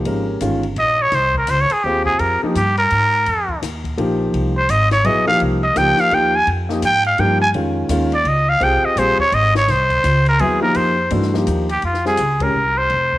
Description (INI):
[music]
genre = modal jazz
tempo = 168 BPM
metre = 3/4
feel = swing 63% on 8ths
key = F minor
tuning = A4 = 441 Hz
[part]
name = warm concert grand piano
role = accompaniment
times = 0.0-12.5 s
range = Eb3 to Bb4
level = -20 LUFS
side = left 1 dB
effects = none
[part]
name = upright bass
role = bass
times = 0.0-13.2 s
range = F1 to Ab2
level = -21 LUFS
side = equal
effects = none
[part]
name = compact cocktail drum kit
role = drums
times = 0.1-13.2 s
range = hi-hat, kick drum, ride cymbal, snare drum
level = -32 LUFS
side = left 4 dB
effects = none
[part]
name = trumpet with straight mute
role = melody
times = 0.8-13.2 s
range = Eb4 to Ab5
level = -16 LUFS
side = equal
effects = none
[sound]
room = light reverb, studio reverb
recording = 1960s-style stereo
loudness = -14 LUFS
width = side -16 dB against mid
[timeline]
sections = 0.0-11.8 A section; 11.8-13.2 B section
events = muted trumpet solo 0.0-11.8; band accent 12.4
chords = 0.0 Fm9; 11.8 Fmadd9